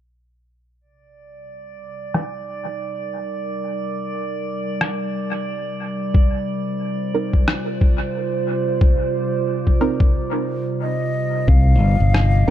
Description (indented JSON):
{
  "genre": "ambient dub",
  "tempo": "90 BPM",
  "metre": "4/4",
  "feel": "swing 57% on 16ths",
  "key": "C minor",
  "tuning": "A4 = 440 Hz",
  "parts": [
    { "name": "warbly tape-like pad", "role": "sustained chords", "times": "0.8-12.5 s", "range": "C3 to C5", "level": "-24 LUFS", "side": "right 2 dB", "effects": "chorus, built-in reverb" },
    { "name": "drifting glass-harmonics texture", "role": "texture", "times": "1.2-12.5 s", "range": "D5 to D6", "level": "-30 LUFS", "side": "right 6 dB", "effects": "chorus, built-in reverb" },
    { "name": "electronic rim click", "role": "drums", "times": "2.1-7.6, 12.1-12.3 s", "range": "none", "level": "-25 LUFS", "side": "left 1 dB", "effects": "overdrive, low-pass filter on snare, low-pass filter on room, dub echo" },
    { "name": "electronic kick drum", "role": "drums", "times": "6.1-11.6 s", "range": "none", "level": "-15 LUFS", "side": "left 1 dB", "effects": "overdrive" },
    { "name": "filtered dub chord stab", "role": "stabs", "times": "7.1-12.5 s", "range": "C4 to Bb4", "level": "-24 LUFS", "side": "right 3 dB", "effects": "chorus, dub echo" },
    { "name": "wooden flute", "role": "melody", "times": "10.8-12.5 s", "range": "Eb5 to F5", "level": "-24 LUFS", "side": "left 5 dB", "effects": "dub echo" },
    { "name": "fingered electric bass", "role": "bass", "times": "11.5-12.5 s", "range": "G1 to C2", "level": "-14 LUFS", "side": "left 1 dB", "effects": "none" }
  ],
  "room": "digital ambience",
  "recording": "echo-heavy mix, faint mains hum",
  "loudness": "-18 LUFS",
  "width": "side -11 dB against mid",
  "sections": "0.8-11.5 A section; 11.5-12.5 B section",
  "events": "fade-in on ambient pad 0.8-11.5; filter sweep on drum 0.8-11.5; break 10.1-11.5",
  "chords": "0.8 Cm7; 11.5 C5"
}